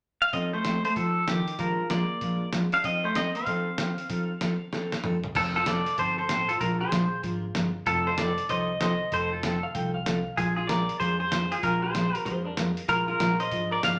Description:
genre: country, western swing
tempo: 191 BPM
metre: 4/4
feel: swing 63% on 8ths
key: F mixolydian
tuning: A4 = 440 Hz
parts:
  - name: pedal steel guitar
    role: melody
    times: 0.2-14.0 s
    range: G4 to F5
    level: -30 LUFS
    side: equal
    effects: none
  - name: vintage hollow-body jazz guitar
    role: second line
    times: 0.3-14.0 s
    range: Eb3 to D5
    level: -37 LUFS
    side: equal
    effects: none
  - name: picked steel-string acoustic guitar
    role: accompaniment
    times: 0.3-14.0 s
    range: Bb2 to Bb4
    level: -32 LUFS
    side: equal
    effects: none
  - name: dusty soul sampler-style drum kit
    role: drums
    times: 0.3-13.9 s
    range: crash cymbal, hi-hat, kick drum, snare drum, toms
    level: -36 LUFS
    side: equal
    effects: none
  - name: upright bass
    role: bass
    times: 5.4-14.0 s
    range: F1 to F2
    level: -41 LUFS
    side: equal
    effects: none
  - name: clean lap steel guitar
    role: second line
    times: 9.6-12.8 s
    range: D4 to G5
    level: -38 LUFS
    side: equal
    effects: none
room: wet large studio reverb, RT60 0.9 s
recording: none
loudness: -27 LUFS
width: mono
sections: 0.3-5.4 A section; 5.4-14.0 B section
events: drum fill 4.7-5.4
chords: 0.3 F9; 1.6 Bb7; 2.8 F7; 5.4 F9; 6.6 Bb9; 7.9 F7; 10.4 Bb9

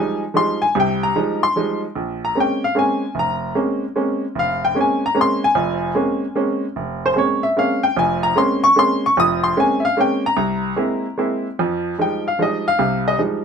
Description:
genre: jazz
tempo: 150 BPM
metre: 3/4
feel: swing 67% on 8ths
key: Bb dorian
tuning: A4 = 439 Hz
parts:
  - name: clear baby grand piano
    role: solo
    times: 0.0-13.4 s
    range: F1 to Eb6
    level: -16 LUFS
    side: equal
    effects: none
room: light reverb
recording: minimal, uncompressed stereo recording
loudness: -16 LUFS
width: side -6 dB against mid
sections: 0.0-1.9 A section; 1.9-11.6 A section; 11.6-13.4 A section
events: none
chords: 0.0 Fm9; 1.9 Bbm9; 10.4 Caug7; 11.6 Fm9

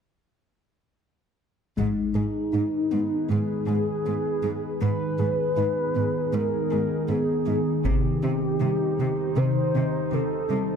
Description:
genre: cinematic, hybrid orchestral and electronic film score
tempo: 79 BPM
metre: 4/4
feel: straight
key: unclear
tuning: A4 = 441 Hz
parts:
  - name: mellow horn-like synth lead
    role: melody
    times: 1.8-10.8 s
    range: D#4 to C5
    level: -27 LUFS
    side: equal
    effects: chorus, phaser
  - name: deep dark ambient pad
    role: sustained chords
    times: 2.7-10.8 s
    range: D#3 to C5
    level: -28 LUFS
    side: right 1 dB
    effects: chorus, built-in reverb
  - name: harp-like synth pluck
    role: arpeggios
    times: 1.8-10.7 s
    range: C3 to G#4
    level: -30 LUFS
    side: left 5 dB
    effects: chorus, digital delay
  - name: rich studio cello section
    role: bass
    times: 1.8-10.6 s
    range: G#2 to C3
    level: -28 LUFS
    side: right 2 dB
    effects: none
  - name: taiko ensemble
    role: drums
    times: 1.8-3.3, 7.8-9.3 s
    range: none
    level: -29 LUFS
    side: equal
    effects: none
room: moderate scoring stage reverb, RT60 1.7 s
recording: none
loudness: -22 LUFS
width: side -7 dB against mid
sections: 1.8-10.8 A section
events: none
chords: 1.8 G#m; 7.9 Cm

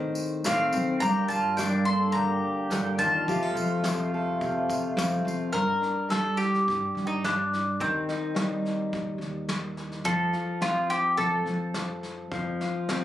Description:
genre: acoustic folk duo or small band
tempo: 106 BPM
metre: 4/4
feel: straight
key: G minor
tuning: A4 = 438 Hz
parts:
  - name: fingerpicked steel-string acoustic guitar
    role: accompaniment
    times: 0.0-13.0 s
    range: G2 to C5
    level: -30 LUFS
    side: left 1 dB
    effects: none
  - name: upright bass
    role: bass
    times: 0.0-12.6 s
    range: Eb2 to A2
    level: -33 LUFS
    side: right 1 dB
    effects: none
  - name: tambourine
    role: percussion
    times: 0.2-5.4 s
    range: none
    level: -41 LUFS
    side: left 2 dB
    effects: none
  - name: bowl-back mandolin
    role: melody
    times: 0.5-13.0 s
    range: C4 to C6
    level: -27 LUFS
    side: left 1 dB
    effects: none
  - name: pedal steel guitar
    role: second line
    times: 0.5-4.9 s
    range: C4 to A4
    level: -33 LUFS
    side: equal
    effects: slapback echo
  - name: soft brush drum kit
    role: drums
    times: 0.5-13.0 s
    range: kick drum, snare drum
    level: -35 LUFS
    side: equal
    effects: none
  - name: mellow accordion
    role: sustained chords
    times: 1.0-5.5 s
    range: Bb2 to G4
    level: -32 LUFS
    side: right 1 dB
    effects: none
room: moderate studio reverb, RT60 0.5 s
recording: recorded on a phone in the room, club reverb, compression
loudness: -24 LUFS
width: side -12 dB against mid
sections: 0.0-5.5 A section; 5.5-13.0 B section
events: none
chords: 0.0 Adim; 1.0 Gm; 3.3 F; 5.5 Gm; 7.8 Eb6; 10.1 F

